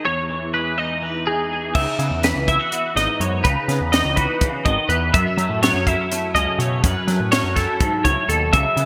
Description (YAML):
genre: math rock and midwest emo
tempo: 248 BPM (eighths)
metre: 7/8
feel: straight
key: unclear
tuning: A4 = 438 Hz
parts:
  - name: twangy electric guitar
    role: accompaniment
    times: 0.0-8.9 s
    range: E2 to G#4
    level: -28 LUFS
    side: equal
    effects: ensemble chorus
  - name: twelve-string electric guitar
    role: arpeggios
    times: 0.0-8.9 s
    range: G#4 to E5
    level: -23 LUFS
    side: equal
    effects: analog chorus
  - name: growling picked electric bass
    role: bass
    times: 1.7-8.9 s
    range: G#1 to F#3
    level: -25 LUFS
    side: equal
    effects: overdrive
  - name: crisp fusion drum kit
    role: drums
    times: 1.8-8.9 s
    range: crash cymbal, hi-hat, kick drum, snare drum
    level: -24 LUFS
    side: equal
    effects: none
room: moderate lush hall reverb, RT60 1.7 s, small room reverb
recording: bright 1980s-style digital production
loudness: -20 LUFS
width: mono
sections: 0.0-1.7 A section; 1.7-8.9 B section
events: break 0.1-1.7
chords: 0.1 Emaj7; 1.7 C#m11; 5.1 F#m7